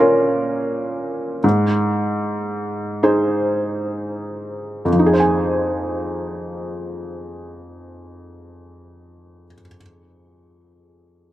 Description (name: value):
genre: classical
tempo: 31-43 BPM (dotted quarters)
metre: 6/8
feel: rubato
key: F minor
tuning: A4 = 439 Hz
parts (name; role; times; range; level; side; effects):
- felt-muted upright piano; accompaniment; 0.0-11.3 s; F2 to Ab5; -18 LUFS; equal; slapback echo
room: little or no reverb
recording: recorded outdoors, with no room sound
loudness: -18 LUFS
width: side -14 dB against mid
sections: 0.0-4.9 A section; 4.9-8.5 B section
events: slowing down 0.0-4.9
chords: 0.0 Bbm; 1.4 Ab; 4.9 Fm7